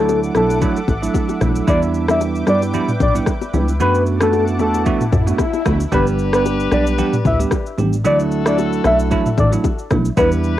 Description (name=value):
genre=afrobeats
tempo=113 BPM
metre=4/4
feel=swing 55% on 16ths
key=unclear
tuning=A4 = 439 Hz
part: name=soft octave-layered synth lead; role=melody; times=0.0-10.3 s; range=A4 to E5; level=-19 LUFS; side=left 1 dB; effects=chorus, cassette tape, analog delay
part: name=bell-like tine electric piano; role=accompaniment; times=0.0-10.6 s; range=F#3 to G4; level=-20 LUFS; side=right 5 dB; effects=medium stereo tremolo, cassette tape
part: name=lush unison pad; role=sustained chords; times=0.0-5.9 s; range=A4 to D6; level=-29 LUFS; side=left 1 dB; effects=chorus, cassette tape
part: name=plucky analog bass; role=bass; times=0.0-10.6 s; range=G1 to G2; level=-20 LUFS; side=equal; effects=none
part: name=afro-pop drum kit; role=drums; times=0.1-10.6 s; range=kick drum, rim click, shaker, toms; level=-20 LUFS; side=equal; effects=none
part: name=bongos and congas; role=percussion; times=0.1-10.3 s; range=none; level=-26 LUFS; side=left 8 dB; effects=none
part: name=swell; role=sound effects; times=4.5-5.9 s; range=none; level=-26 LUFS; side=left 5 dB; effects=none
part: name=warm horn section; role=second line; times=5.9-10.6 s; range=D4 to B4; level=-25 LUFS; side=left 8 dB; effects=cassette tape
room=light reverb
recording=home recording on cassette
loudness=-14 LUFS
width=side -13 dB against mid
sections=0.0-5.9 A section; 5.9-10.6 B section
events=swell 4.5-5.9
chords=0.0 Dadd9; 1.7 Em7; 3.8 Bm7; 5.9 G; 8.0 Dadd9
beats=0.08 0.61 1.15 | 1.68 2.21 2.74 3.27 | 3.80 4.33 4.86 5.39 | 5.92 6.46 6.99 7.52 | 8.05 8.58 9.11 9.64 | 10.17